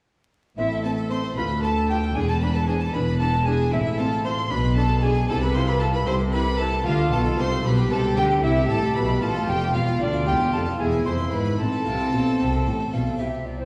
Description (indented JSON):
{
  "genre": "classical, baroque-style concerto movement with solo episodes",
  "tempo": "76 BPM (dotted quarters)",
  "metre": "6/8",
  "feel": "straight",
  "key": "A minor",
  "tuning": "A4 = 438 Hz",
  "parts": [
    { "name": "mellow alto recorder", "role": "melody", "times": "0.6-13.7 s", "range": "C5 to C6", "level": "-31 LUFS", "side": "equal", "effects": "none" },
    { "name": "warm chamber violin section", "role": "melody", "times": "0.6-13.7 s", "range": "C4 to C6", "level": "-35 LUFS", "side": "equal", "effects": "none" },
    { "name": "rich chamber violin section", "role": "second line", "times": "0.6-13.7 s", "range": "D4 to C5", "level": "-32 LUFS", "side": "equal", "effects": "none" },
    { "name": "harpsichord", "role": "accompaniment", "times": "0.6-13.7 s", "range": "D2 to D5", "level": "-33 LUFS", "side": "equal", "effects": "none" },
    { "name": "warm chamber viola section", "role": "accompaniment", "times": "0.6-13.7 s", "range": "G3 to G4", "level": "-32 LUFS", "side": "equal", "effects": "none" },
    { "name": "rich chamber cello section", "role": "bass", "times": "0.6-13.7 s", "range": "D2 to D3", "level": "-30 LUFS", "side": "equal", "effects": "none" },
    { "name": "rich chamber double bass section", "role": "bass", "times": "0.6-13.7 s", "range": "E1 to D2", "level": "-28 LUFS", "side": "equal", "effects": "none" }
  ],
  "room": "wet recital hall reverb, RT60 1.8 s",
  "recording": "heard from further back in the room, vinyl crackle",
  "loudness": "-23 LUFS",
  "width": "mono",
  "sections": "0.6-13.2 A section",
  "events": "none",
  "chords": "0.6 Am; 1.4 Dm; 2.2 E5; 3.7 Am; 4.5 G#dim/B; 5.3 Am/C; 6.9 Dm; 7.6 G/B; 8.4 C5; 9.2 F; 10.0 Fmaj13; 10.8 E; 11.6 Am"
}